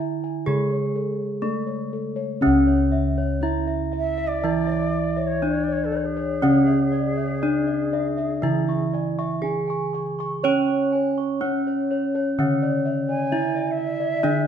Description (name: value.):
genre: gamelan.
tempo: 61 BPM.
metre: 4/4.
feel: uneven beats.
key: C# pelog.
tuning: A4 = 438 Hz.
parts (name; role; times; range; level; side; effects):
gamelan-type bronze metallophone; melody; 0.0-14.5 s; A3 to C#5; -24 LUFS; left 1 dB; none.
gamelan-type bronze metallophone; accompaniment; 0.0-14.5 s; C#3 to C#4; -27 LUFS; right 4 dB; none.
gamelan-type bossed gongs; arpeggios; 0.0-14.5 s; A4 to C#6; -32 LUFS; left 6 dB; none.
gamelan-type bossed gongs; bass; 0.5-14.5 s; C#2 to C#5; -27 LUFS; equal; none.
gamelan-type bronze metallophone; arpeggios; 2.4-14.4 s; C#5 to C#6; -31 LUFS; right 1 dB; none.
breathy bansuri; second line; 4.0-14.5 s; G#4 to G#5; -29 LUFS; right 2 dB; none.
room: wet recital hall reverb, RT60 1.4 s.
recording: minimal, uncompressed stereo recording.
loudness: -20 LUFS.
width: side -8 dB against mid.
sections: 0.0-2.4 A section; 2.4-14.5 B section.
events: none.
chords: none.